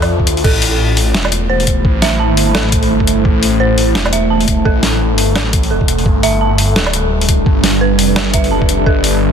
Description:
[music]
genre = half-time drum and bass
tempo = 171 BPM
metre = 4/4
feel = swing 59% on 16ths, half-time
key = A minor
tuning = A4 = 440 Hz
[part]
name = deep dark ambient pad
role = sustained chords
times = 0.0-9.3 s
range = G3 to B5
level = -17 LUFS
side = right 1 dB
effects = chorus, built-in reverb, sidechain pumping
[part]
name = dark detuned synth bell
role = arpeggios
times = 0.0-9.3 s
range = A4 to A5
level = -19 LUFS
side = right 3 dB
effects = chorus, tape echo
[part]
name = phased detuned saw bass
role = bass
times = 0.0-9.3 s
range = D1 to F2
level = -16 LUFS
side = equal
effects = phaser
[part]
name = boom bap sampler-style drum kit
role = drums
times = 0.0-9.1 s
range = crash cymbal, hi-hat, snare drum, woodblock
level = -17 LUFS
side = left 1 dB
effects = none
[part]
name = electronic kick drum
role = drums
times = 0.2-8.9 s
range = none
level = -15 LUFS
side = equal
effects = none
[sound]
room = digital ambience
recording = dense, heavily limited modern master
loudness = -10 LUFS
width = side -7 dB against mid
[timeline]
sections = 0.0-9.3 A section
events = none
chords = 0.4 Am; 6.1 G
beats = 0.09 | 0.44 0.79 1.15 1.50 | 1.85 2.20 2.55 2.90 | 3.25 3.60 3.95 4.30 | 4.65 5.00 5.36 5.71 | 6.06 6.41 6.76 7.11 | 7.46 7.81 8.16 8.51 | 8.86 9.21

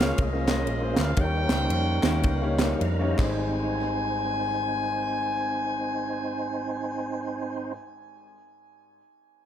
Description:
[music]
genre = uptempo gospel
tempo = 96-125 BPM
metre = 4/4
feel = swing 63% on 8ths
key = Ab major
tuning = A4 = 440 Hz
[part]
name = warm horn section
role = melody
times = 0.0-7.7 s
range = Ab4 to Ab5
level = -31 LUFS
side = left 2 dB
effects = tape echo
[part]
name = warm grand piano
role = accompaniment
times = 0.0-7.8 s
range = Ab1 to Db5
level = -32 LUFS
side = left 2 dB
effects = tape echo
[part]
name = tonewheel organ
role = sustained chords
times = 0.0-7.7 s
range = G3 to Bb5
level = -32 LUFS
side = right 3 dB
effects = slow rotary speaker, overdrive, chorus vibrato
[part]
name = hollow-body short-scale fingered electric bass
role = bass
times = 0.0-7.7 s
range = Ab1 to F2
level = -29 LUFS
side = equal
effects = none
[part]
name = crisp fusion drum kit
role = drums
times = 0.0-3.3 s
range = crash cymbal, kick drum, ride cymbal, snare drum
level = -27 LUFS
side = right 1 dB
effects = tape echo
[part]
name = group handclap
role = percussion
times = 0.0-3.8 s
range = none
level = -38 LUFS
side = left 2 dB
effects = tape echo
[sound]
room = light reverb, small room ambience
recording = echo-heavy mix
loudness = -24 LUFS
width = side -10 dB against mid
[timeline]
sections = 0.0-3.4 A section; 3.4-8.4 B section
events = slowing down 0.0-3.4; tonewheel organ fill 2.5-3.4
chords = 0.0 Bbm7; 1.2 Eb7; 3.1 Abmaj7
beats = 0.19 0.68 | 1.18 1.70 2.24 2.82 | 3.42 4.05 4.67 5.30 | 5.93 6.55 7.18

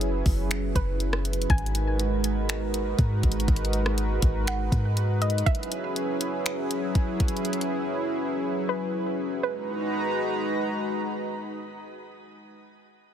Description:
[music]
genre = hip hop, atmospheric cloud-rap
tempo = 121 BPM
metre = 4/4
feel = half-time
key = G# minor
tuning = A4 = 441 Hz
[part]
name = warm analog pad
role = sustained chords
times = 0.0-12.5 s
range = F#3 to A#5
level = -28 LUFS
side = right 1 dB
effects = chorus, sidechain pumping
[part]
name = soft 808-style bass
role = bass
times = 0.0-5.4 s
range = F#1 to G#2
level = -26 LUFS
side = equal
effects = none
[part]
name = smooth R&B drum kit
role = drums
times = 0.0-7.7 s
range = finger snaps, hi-hat, kick drum, rim click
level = -26 LUFS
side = equal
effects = soft clipping on snare
[part]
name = soft round pluck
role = melody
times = 0.8-10.9 s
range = B4 to G#5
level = -34 LUFS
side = equal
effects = chorus, low-pass filter, tape echo
[sound]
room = little or no reverb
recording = dense, heavily limited modern master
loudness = -24 LUFS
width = side -9 dB against mid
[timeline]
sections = 0.0-9.4 A section; 9.4-13.1 B section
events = none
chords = 0.0 F#7sus4; 1.5 G#m9; 5.5 F#7sus4; 9.4 G#m9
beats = 0.01 0.51 1.00 | 1.50 1.99 2.49 2.99 | 3.48 3.98 4.47 4.97 | 5.46 5.96 6.46 6.95 | 7.45 7.94 8.44 8.94 | 9.43 9.93 10.42 10.92 | 11.41 11.91 12.41

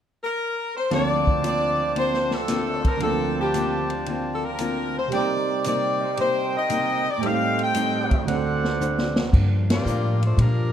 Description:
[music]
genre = jazz, big band swing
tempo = 114 BPM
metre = 4/4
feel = swing 69% on 8ths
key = G minor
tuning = A4 = 440 Hz
[part]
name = edgy saxophone section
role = melody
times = 0.2-10.7 s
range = G3 to G5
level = -24 LUFS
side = left 2 dB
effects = none
[part]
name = archtop guitar, miked and amplified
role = accompaniment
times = 0.9-10.7 s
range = G2 to F#4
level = -30 LUFS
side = left 3 dB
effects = none
[part]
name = warm grand piano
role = accompaniment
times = 0.9-9.4 s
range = D2 to F#5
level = -28 LUFS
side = right 7 dB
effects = none
[part]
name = mellow trumpet section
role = stabs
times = 0.9-9.3 s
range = D4 to A5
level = -29 LUFS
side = right 2 dB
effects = none
[part]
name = swinging big-band drum kit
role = drums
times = 0.9-10.6 s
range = crash cymbal, hi-hat, kick drum, ride cymbal, snare drum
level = -25 LUFS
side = equal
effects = none
[part]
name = upright bass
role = bass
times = 9.3-10.7 s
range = G2 to Bb2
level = -20 LUFS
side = equal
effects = none
[sound]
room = moderate concert hall reverb, RT60 2.3 s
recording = dark, warm production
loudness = -20 LUFS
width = side -9 dB against mid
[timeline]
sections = 0.9-9.3 A section; 9.3-10.7 B section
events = drum fill 8.8-9.3; band accent 9.6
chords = 0.0 N.C.; 0.9 Gm11/D; 5.1 Cm7; 7.2 Am7b5; 8.3 D7; 9.3 Gm7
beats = 0.38 | 0.91 1.43 1.96 2.49 | 3.01 3.54 4.07 4.59 | 5.12 5.65 6.17 6.70 | 7.23 7.75 8.28 8.81 | 9.34 9.86 10.39

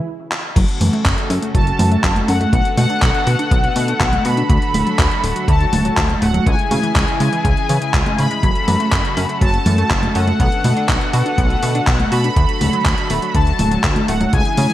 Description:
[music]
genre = italo disco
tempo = 122 BPM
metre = 4/4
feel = straight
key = F# minor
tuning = A4 = 440 Hz
[part]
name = analog synth brass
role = melody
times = 0.0-14.7 s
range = F#5 to B5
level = -21 LUFS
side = left 1 dB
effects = chorus, digital delay
[part]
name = lush unison pad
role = sustained chords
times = 0.0-14.7 s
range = C#3 to A4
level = -24 LUFS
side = equal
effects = chorus
[part]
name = analog pluck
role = arpeggios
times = 0.0-14.7 s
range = C#2 to F#4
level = -24 LUFS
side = left 1 dB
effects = chorus, ping-pong delay
[part]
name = gated 80s digital drum machine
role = drums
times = 0.3-14.7 s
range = congas, crash cymbal, handclaps, hi-hat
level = -20 LUFS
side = equal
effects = gated reverb
[part]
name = chorused synth bass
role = bass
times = 0.6-14.7 s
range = D1 to C#3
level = -19 LUFS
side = equal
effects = tube saturation
[part]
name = electronic kick drum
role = drums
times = 0.6-14.4 s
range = none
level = -18 LUFS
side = equal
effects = none
[sound]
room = light reverb, digital ambience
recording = bright 1980s-style digital production, vinyl crackle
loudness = -14 LUFS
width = side -13 dB against mid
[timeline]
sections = 0.6-14.7 A section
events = stop 0.1-0.6; drum fill 0.3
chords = 0.0 N.C.; 0.6 F#m; 2.5 Bm7; 4.5 D; 6.5 C#m; 8.4 F#m; 10.4 Bm7; 12.4 D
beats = 0.07 | 0.56 1.05 1.55 2.04 | 2.53 3.02 3.51 4.00 | 4.50 4.99 5.48 5.97 | 6.46 6.96 7.45 7.94 | 8.43 8.92 9.41 9.91 | 10.40 10.89 11.38 11.87 | 12.37 12.86 13.35 13.84 | 14.33

